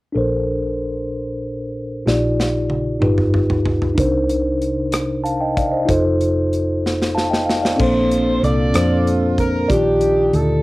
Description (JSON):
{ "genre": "slow gospel", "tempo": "63 BPM (dotted quarters)", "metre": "6/8", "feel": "straight", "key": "Bb major", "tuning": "A4 = 441 Hz", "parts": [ { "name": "mellow tine electric piano", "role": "accompaniment", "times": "0.1-10.6 s", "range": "G2 to A5", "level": "-18 LUFS", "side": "equal", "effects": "medium stereo tremolo" }, { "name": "hollow-body short-scale fingered electric bass", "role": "bass", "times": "0.2-10.6 s", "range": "F1 to F2", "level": "-22 LUFS", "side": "equal", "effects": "none" }, { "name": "modern studio drum kit", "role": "drums", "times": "2.1-10.5 s", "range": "crash cymbal, hi-hat, kick drum, rim click, snare drum, toms", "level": "-22 LUFS", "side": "equal", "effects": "cassette tape" }, { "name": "dark saxophone section", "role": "melody", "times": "7.8-10.6 s", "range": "D4 to D5", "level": "-19 LUFS", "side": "equal", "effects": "none" } ], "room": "moderate studio reverb, RT60 0.6 s", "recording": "home recording on cassette", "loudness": "-16 LUFS", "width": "side -19 dB against mid", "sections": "0.2-7.8 A section; 7.8-10.6 B section", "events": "drum fill 2.1-4.0, 6.8-7.8; tine electric piano fill 6.8-7.8", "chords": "0.2 Bbmaj9; 2.1 Ebmaj9/Bb; 3.0 Gaug7; 4.0 Cm9; 5.9 F7; 7.8 Bbmaj9; 9.7 Ebmaj9/Bb" }